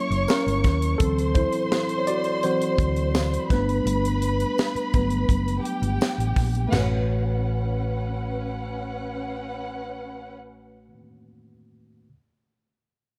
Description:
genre	lush 1970s-style soul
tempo	84 BPM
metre	4/4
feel	straight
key	A mixolydian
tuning	A4 = 441 Hz
part	warm studio string section	second line	0.0-10.3 s	C#4 to C#6	-32 LUFS	equal	none
part	tine electric piano	accompaniment	0.0-12.1 s	E3 to E5	-29 LUFS	equal	overdrive
part	hollow-body short-scale fingered electric bass	bass	0.1-10.9 s	F#1 to D#2	-28 LUFS	equal	none
part	tight funk drum kit	drums	0.1-6.9 s	china cymbal, hi-hat, kick drum, snare drum, toms	-27 LUFS	equal	none
part	tambourine	percussion	0.3-7.1 s	none	-45 LUFS	equal	none
room	light reverb, small room ambience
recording	dark, warm production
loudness	-24 LUFS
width	mono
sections	0.0-6.7 A section; 6.7-9.6 B section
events	tine electric piano solo 0.0-6.7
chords	0.0 F#7; 1.0 D7; 3.5 Gmaj9; 6.7 A69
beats	0.29 | 1.00 1.72 2.43 3.14 | 3.86 4.57 5.29 6.00 | 6.72 7.43 8.15 8.86

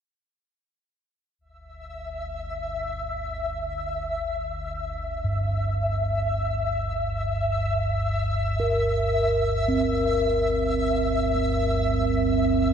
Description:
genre	dark ambient drone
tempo	free time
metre	none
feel	none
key	G dorian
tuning	A4 = 442 Hz
part	deep rumbling drone	drone	1.6-12.7 s	G1 to D2	-31 LUFS	left 2 dB	built-in reverb, wide subtle chorus
part	flickering grainy texture	texture	1.9-12.7 s	E5	-28 LUFS	left 1 dB	built-in reverb, ensemble chorus
part	bronze singing bowl	arpeggios	5.2-12.7 s	G2 to Bb4	-24 LUFS	right 2 dB	tape echo
room	wet lush hall reverb, RT60 2.6 s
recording	dreamy mix soaked in reverb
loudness	-23 LUFS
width	side -8 dB against mid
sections	1.4-12.7 A section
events	fade-in on synth drone 1.4-12.7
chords	1.4 Gm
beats	free time

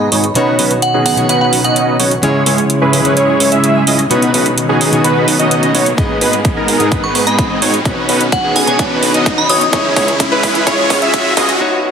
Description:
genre	EDM, festival progressive house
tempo	128 BPM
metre	4/4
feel	straight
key	B major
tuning	A4 = 440 Hz
part	fingerpicked plugged-in steel-string acoustic guitar	accompaniment	0.0-11.9 s	G#2 to D#5	-19 LUFS	left 2 dB	sidechain pumping, dub echo
part	lush unison pad	sustained chords	0.0-11.6 s	C#3 to E4	-23 LUFS	right 1 dB	chorus, sidechain pumping
part	wide unison lead	arpeggios	0.0-11.5 s	G#4 to E5	-19 LUFS	equal	sidechain pumping, dub echo
part	dense compressed supersaw	riff	0.0-11.5 s	G#3 to E5	-16 LUFS	right 1 dB	sidechain pumping, low-pass filter, dub echo
part	riser	sound effects	1.8-11.6 s	none	-21 LUFS	equal	none
part	fat analog bass	bass	0.1-11.6 s	G#1 to C#2	-22 LUFS	equal	sidechain pumping, high-pass filter
part	electronic hi-hat	drums	0.1-11.6 s	none	-17 LUFS	right 3 dB	none
part	glassy synth bell	melody	0.8-2.1, 7.0-9.8 s	F#5 to D#6	-18 LUFS	right 2 dB	chorus, phaser, dub echo
part	electronic kick drum	drums	6.0-11.5 s	none	-18 LUFS	equal	none
room	moderate lush hall reverb, RT60 1.8 s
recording	dense, heavily limited modern master, high-pass filter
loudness	-10 LUFS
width	side -7 dB against mid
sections	0.0-11.9 A section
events	build-up 0.0-11.9; filter sweep on supersaw synth 0.0-11.9; filter sweep on analog synth lead 0.0-11.9; filter sweep on analog synth pad 0.0-11.9; riser 1.8-11.6; drum fill 6.0-11.6; break 11.6-11.9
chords	0.4 Badd9; 2.2 C#m; 4.1 Badd9; 6.0 G#m; 7.9 Badd9; 9.7 C#m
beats	| 0.35 0.82 1.29 1.76 | 2.23 2.70 3.17 3.64 | 4.11 4.57 5.04 5.51 | 5.98 6.45 6.92 7.39 | 7.86 8.32 8.79 9.26 | 9.73 10.20 10.67 11.14 | 11.61

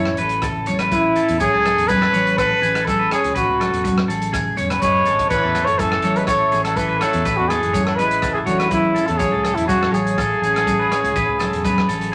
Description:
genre	highlife guitar band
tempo	123 BPM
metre	4/4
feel	straight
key	unclear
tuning	A4 = 441 Hz
part	breathy trumpet	melody	0.0-12.1 s	E4 to C#5	-21 LUFS	equal	none
part	clean electric guitar	accompaniment	0.0-12.1 s	A2 to A4	-30 LUFS	equal	spring reverb
part	electric guitar at the edge of break-up	arpeggios	0.0-12.1 s	G#4 to C#5	-25 LUFS	equal	spring reverb
part	fingered electric bass	bass	0.0-12.1 s	E1 to E2	-29 LUFS	equal	none
part	crunchy breakbeat drum kit	drums	0.1-12.1 s	hi-hat, kick drum, rim click	-31 LUFS	equal	none
part	congas	percussion	0.2-12.0 s	none	-27 LUFS	equal	none
part	maracas	percussion	0.2-12.0 s	none	-42 LUFS	equal	none
part	raspy tenor saxophone	second line	4.8-12.1 s	C#3 to A3	-33 LUFS	equal	none
room	wet studio reverb, RT60 0.6 s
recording	none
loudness	-18 LUFS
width	mono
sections	0.0-12.1 A section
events	none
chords	0.0 Aadd9; 1.4 F#sus2; 5.3 Aadd9; 9.2 F#sus2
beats	0.43 0.92 | 1.41 1.89 2.38 2.87 | 3.36 3.84 4.33 4.82 | 5.30 5.79 6.28 6.77 | 7.25 7.74 8.23 8.72 | 9.20 9.69 10.18 10.67 | 11.15 11.64 12.13

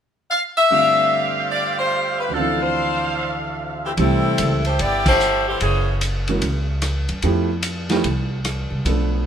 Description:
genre	jazz, big band swing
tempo	147 BPM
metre	4/4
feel	swing 64% on 8ths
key	C major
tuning	A4 = 441 Hz
part	warm saxophone section	melody	0.3-6.0 s	E3 to F5	-19 LUFS	left 2 dB	none
part	warm concert grand piano	accompaniment	0.7-9.3 s	D2 to A4	-24 LUFS	right 3 dB	none
part	bright trumpet section	stabs	0.7-4.0 s	G4 to G5	-24 LUFS	right 1 dB	none
part	upright bass	bass	4.0-9.3 s	F#1 to F#2	-22 LUFS	equal	none
part	vintage drum kit	drums	4.0-9.0 s	crash cymbal, hi-hat, kick drum, ride cymbal, rim click, snare drum	-25 LUFS	equal	none
room	light reverb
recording	minimal, uncompressed stereo recording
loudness	-17 LUFS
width	side -8 dB against mid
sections	0.7-4.0 A section; 4.0-9.3 B section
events	band accent 5.0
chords	0.0 N.C.; 0.7 G7sus4; 2.3 Dm7; 4.0 C6; 5.6 F#9; 7.2 Fmaj9#11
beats	0.30 | 0.71 1.12 1.53 1.94 | 2.35 2.75 3.16 3.57 | 3.98 4.39 4.79 5.20 | 5.61 6.02 6.42 6.83 | 7.24 7.64 8.05 8.45 | 8.86

